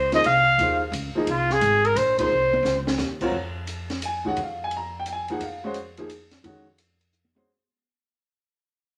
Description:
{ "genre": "modal jazz", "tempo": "174 BPM", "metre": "3/4", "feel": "swing 65% on 8ths", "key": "F phrygian", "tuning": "A4 = 441 Hz", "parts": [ { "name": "mellow trumpet", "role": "melody", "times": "0.0-3.0 s", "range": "F4 to F5", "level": "-22 LUFS", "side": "equal", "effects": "none" }, { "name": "upright bass", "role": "bass", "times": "0.0-7.4 s", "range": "Ab1 to F2", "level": "-34 LUFS", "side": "equal", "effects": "none" }, { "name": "warm upright piano", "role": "accompaniment", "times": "0.1-7.5 s", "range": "Eb3 to Bb5", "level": "-30 LUFS", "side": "equal", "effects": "none" }, { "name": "open jazz drum kit", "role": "drums", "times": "0.1-7.5 s", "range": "crash cymbal, hi-hat, kick drum, ride cymbal, snare drum, toms", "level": "-35 LUFS", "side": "equal", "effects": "none" } ], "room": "moderate studio reverb, RT60 0.9 s", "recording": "none", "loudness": "-23 LUFS", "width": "mono", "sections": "0.0-3.3 A section; 3.3-7.5 B section", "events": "band accent 2.1; drum fill 2.3-3.0, 7.1-7.5; fade-out 3.3-7.5", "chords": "0.0 Fm7" }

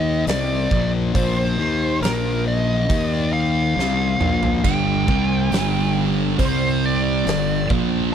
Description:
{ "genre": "stoner and doom metal", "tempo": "69 BPM", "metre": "4/4", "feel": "straight", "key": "unclear", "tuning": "A4 = 444 Hz", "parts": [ { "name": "fuzz lead guitar", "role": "melody", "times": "0.0-7.7 s", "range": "Bb4 to G5", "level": "-24 LUFS", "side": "right 2 dB", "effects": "wah, distortion, tape echo" }, { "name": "thick fuzz guitar", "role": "riff", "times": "0.0-8.1 s", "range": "G2 to Eb4", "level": "-22 LUFS", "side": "left 8 dB", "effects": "distortion" }, { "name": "fuzz fingered electric bass", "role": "bass", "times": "0.0-8.1 s", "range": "G1 to Eb2", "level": "-24 LUFS", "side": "right 1 dB", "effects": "overdrive, tube saturation" }, { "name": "oversized low-tuned drum kit", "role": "drums", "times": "0.3-7.9 s", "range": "crash cymbal, hi-hat, kick drum, snare drum, toms", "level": "-26 LUFS", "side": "right 1 dB", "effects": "none" }, { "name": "thick fuzz guitar", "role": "riff", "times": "4.6-8.1 s", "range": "G2 to C4", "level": "-22 LUFS", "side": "right 16 dB", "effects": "distortion" } ], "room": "little or no reverb", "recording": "none", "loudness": "-17 LUFS", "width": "side -8 dB against mid", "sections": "0.0-8.1 A section", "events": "drum fill 3.8-4.6", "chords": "0.3 Bb5; 2.9 Eb5; 3.8 Bb5; 4.6 G5; 6.4 C5; 7.3 G5" }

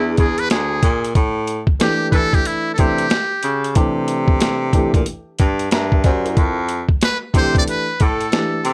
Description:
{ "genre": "hip hop, jazz-hop", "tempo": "92 BPM", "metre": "4/4", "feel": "swing 63% on 16ths", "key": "C major", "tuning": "A4 = 440 Hz", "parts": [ { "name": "trumpet with metal mute", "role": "melody", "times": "0.0-8.7 s", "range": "E4 to D5", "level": "-23 LUFS", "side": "equal", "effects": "plate reverb" }, { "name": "dark grand piano", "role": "accompaniment", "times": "0.0-8.6 s", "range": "E3 to Bb5", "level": "-25 LUFS", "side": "equal", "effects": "none" }, { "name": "warm baritone saxophone", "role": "bass", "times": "0.0-8.7 s", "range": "D2 to E3", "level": "-23 LUFS", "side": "equal", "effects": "none" }, { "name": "boom bap sampler-style drum kit", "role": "drums", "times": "0.2-8.7 s", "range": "hi-hat, kick drum, snare drum", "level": "-19 LUFS", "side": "equal", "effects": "none" } ], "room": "light reverb", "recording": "dark, warm production", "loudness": "-18 LUFS", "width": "mono", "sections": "0.0-8.7 A section", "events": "muted trumpet solo 0.0-8.7; grand piano fill 5.4-6.4", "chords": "0.0 E7; 1.2 A7(no3); 3.8 C7; 6.4 Fmaj7" }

